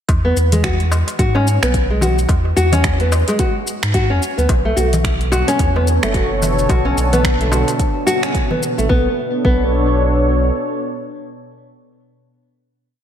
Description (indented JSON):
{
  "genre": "organic downtempo",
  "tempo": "109 BPM",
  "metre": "4/4",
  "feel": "swing 59% on 16ths",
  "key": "B dorian",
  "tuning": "A4 = 440 Hz",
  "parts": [
    { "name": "warm sub bass", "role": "bass", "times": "0.1-10.5 s", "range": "F#1 to G#2", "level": "-17 LUFS", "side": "equal", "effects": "tube saturation" },
    { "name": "deep house drum kit", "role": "drums", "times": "0.1-8.9 s", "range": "finger snaps, hi-hat, shaker", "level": "-24 LUFS", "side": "right 1 dB", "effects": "none" },
    { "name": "electronic kick drum", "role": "drums", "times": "0.1-9.6 s", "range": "none", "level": "-19 LUFS", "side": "equal", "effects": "none" },
    { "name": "darbuka", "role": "percussion", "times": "0.1-8.6 s", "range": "none", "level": "-26 LUFS", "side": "left 2 dB", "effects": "slapback echo" },
    { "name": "nylon-string guitar", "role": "arpeggios", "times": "0.2-9.6 s", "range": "G#3 to F#4", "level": "-19 LUFS", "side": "left 1 dB", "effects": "digital delay, slapback echo" },
    { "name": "warm analog pad", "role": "sustained chords", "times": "4.5-11.9 s", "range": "B2 to C#5", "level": "-21 LUFS", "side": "right 1 dB", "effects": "wide subtle chorus, sidechain pumping" }
  ],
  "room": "moderate concert hall reverb, RT60 1.8 s, digital ambience",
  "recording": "big arena sound",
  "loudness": "-14 LUFS",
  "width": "side -9 dB against mid",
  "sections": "0.1-8.9 groove; 8.9-11.1 final chord",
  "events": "none",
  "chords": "0.1 E; 4.5 Bm7"
}